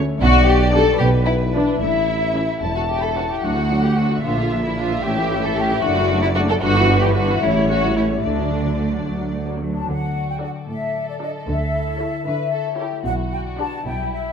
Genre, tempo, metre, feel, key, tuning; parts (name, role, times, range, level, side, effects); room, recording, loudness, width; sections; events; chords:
cinematic, playful, whimsical film cue; 75 BPM (dotted quarters); 6/8; straight; D major; A4 = 440 Hz
muted studio violin section; melody; 0.0-13.8 s; B4 to B5; -26 LUFS; left 2 dB
muted studio viola section; accompaniment; 0.0-13.8 s; D3 to A4; -26 LUFS; equal
concert harp; arpeggios; 0.0-14.3 s; F#2 to D6; -26 LUFS; left 10 dB
mellow tuba; bass; 0.0-9.8 s; E1 to D2; -25 LUFS; right 4 dB
muted studio cello section; bass; 0.0-14.3 s; D2 to G3; -26 LUFS; right 1 dB
muted studio double bass section; bass; 0.0-14.3 s; E1 to D2; -24 LUFS; right 2 dB
muted studio violin section; second line; 0.2-14.3 s; D4 to B4; -23 LUFS; left 1 dB
bright large flute ensemble; second line; 9.8-14.3 s; D5 to A5; -27 LUFS; left 2 dB
moderate scoring stage reverb, RT60 1.5 s; -17 LUFS; side -7 dB against mid
0.0-9.9 A section; 9.9-14.3 B section
0.2 G/B; 1.0 Em7/B; 1.8 A; 3.4 D; 4.2 Bb; 5.0 A; 5.8 D/F#; 6.6 Em7/G; 7.4 A7; 8.2 D; 11.5 A/D; 13.1 G/B